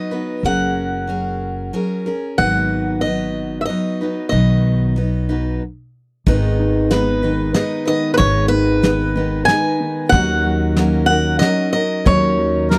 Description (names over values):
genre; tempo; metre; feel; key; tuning
acoustic folk duo or small band; 93 BPM; 3/4; straight; G# minor; A4 = 440 Hz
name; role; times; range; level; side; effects
picked swing-style acoustic guitar; melody; 0.0-12.7 s; B4 to G#5; -22 LUFS; equal; none
picked steel-string acoustic guitar; accompaniment; 0.0-12.8 s; G#2 to B4; -23 LUFS; equal; none
upright bass; bass; 0.4-12.8 s; F#1 to D#2; -22 LUFS; equal; none
felt-muted upright piano; arpeggios; 6.3-12.8 s; D#3 to D#4; -26 LUFS; equal; none
soft brush drum kit; drums; 6.3-12.8 s; hi-hat, kick drum, snare drum; -20 LUFS; equal; none
melodica; second line; 12.7-12.8 s; A#4; -22 LUFS; equal; none
room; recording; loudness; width
little or no reverb; dry, close 1970s-style studio recording; -18 LUFS; mono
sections
0.0-6.3 A section; 6.3-12.8 B section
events
stop 5.6-6.3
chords
0.4 F#add9; 2.4 G#m7; 4.3 B; 6.3 G#m; 10.1 D#m7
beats
| 0.43 1.08 1.73 | 2.38 3.03 3.68 | 4.33 4.97 5.62 | 6.27 6.91 7.56 | 8.20 8.85 9.49 | 10.13 10.78 11.42 | 12.07 12.71